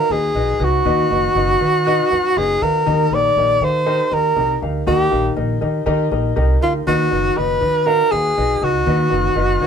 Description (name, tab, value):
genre	uptempo 1960s-style soul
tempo	120 BPM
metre	4/4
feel	straight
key	unclear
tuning	A4 = 435 Hz
part	breathy tenor saxophone	melody	0.0-9.7 s	F4 to D5	-16 LUFS	right 1 dB	none
part	warm concert grand piano	accompaniment	0.0-9.7 s	D#3 to F#5	-22 LUFS	left 4 dB	none
part	upright bass	bass	0.1-9.7 s	F#1 to D#3	-21 LUFS	equal	none
room	moderate small room ambience, RT60 0.5 s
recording	band playing live in one room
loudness	-15 LUFS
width	side -7 dB against mid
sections	0.0-9.7 A section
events	none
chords	0.0 B; 2.9 Eb; 6.9 B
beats	0.36 | 0.86 1.36 1.86 2.36 | 2.86 3.37 3.87 4.37 | 4.87 5.37 5.87 6.37 | 6.87 7.37 7.87 8.37 | 8.87 9.37